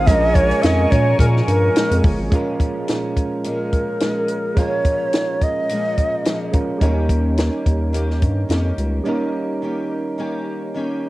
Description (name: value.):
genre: indie pop, bedroom pop.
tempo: 107 BPM.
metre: 4/4.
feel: swing 55% on 16ths.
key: Bb dorian.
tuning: A4 = 442 Hz.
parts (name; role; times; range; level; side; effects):
breathy long shakuhachi; melody; 0.0-6.5 s; Bb4 to F5; -20 LUFS; equal; lush chorus, cassette tape, analog delay.
picked steel-string acoustic guitar; accompaniment; 0.0-11.1 s; Bb2 to G4; -27 LUFS; left 2 dB; analog chorus, vibrato effect, cassette tape.
soft electric-piano-like synth keys; accompaniment; 0.0-11.1 s; G3 to C5; -24 LUFS; right 3 dB; chorus, cassette tape.
phased analog pad; sustained chords; 0.0-2.3 s; Bb4 to Db6; -27 LUFS; equal; phaser, chorus, cassette tape.
round analog bass; bass; 0.0-2.3, 6.8-9.0 s; G1 to Bb2; -18 LUFS; equal; none.
compact cocktail drum kit; drums; 0.1-8.9 s; hi-hat, kick drum, snare drum; -18 LUFS; equal; cassette tape.
room: small room ambience.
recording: home recording on cassette.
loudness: -17 LUFS.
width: side -18 dB against mid.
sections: 0.0-2.3 A section; 2.3-11.1 B section.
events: break 9.1-11.1.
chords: 0.1 Bbm7; 6.8 Eb7.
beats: | 0.08 0.64 1.20 1.76 | 2.32 2.88 3.44 4.00 | 4.57 5.13 5.69 6.25 | 6.82 7.38 7.94 8.50 | 9.06 9.63 10.19 10.75.